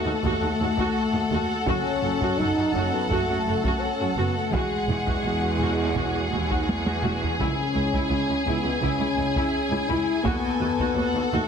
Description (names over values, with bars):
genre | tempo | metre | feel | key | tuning
cinematic, epic orchestral film score | 84 BPM | 4/4 | straight | C# minor | A4 = 439 Hz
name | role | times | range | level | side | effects
rich symphonic violin section | melody | 0.0-11.5 s | F#5 to G#5 | -33 LUFS | left 2 dB | none
clear symphonic violin section | second line | 0.0-11.5 s | G#4 to A4 | -30 LUFS | left 2 dB | none
clear studio viola section | accompaniment | 0.0-11.5 s | E4 to F#4 | -31 LUFS | right 1 dB | none
mellow French horn section | sustained chords | 0.0-11.5 s | G#3 to E4 | -27 LUFS | left 3 dB | none
rich studio cello section | bass | 0.1-11.4 s | C#2 to F#2 | -30 LUFS | right 3 dB | none
rich symphonic double bass section | bass | 0.2-11.4 s | E1 to D#2 | -31 LUFS | right 3 dB | none
taiko ensemble | drums | 0.2-11.5 s | none | -31 LUFS | equal | none
timpani | percussion | 7.4-8.4 s | C#3 | -35 LUFS | left 2 dB | none
room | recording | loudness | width
wet scoring stage reverb, RT60 1.6 s | heavily compressed radio sound, multiband compression | -22 LUFS | side -7 dB against mid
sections
0.0-11.5 A section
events
drum fill 6.7-7.4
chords
0.0 D#dim; 1.7 F#m; 4.5 Eadd9; 7.4 C#m; 10.3 D#dim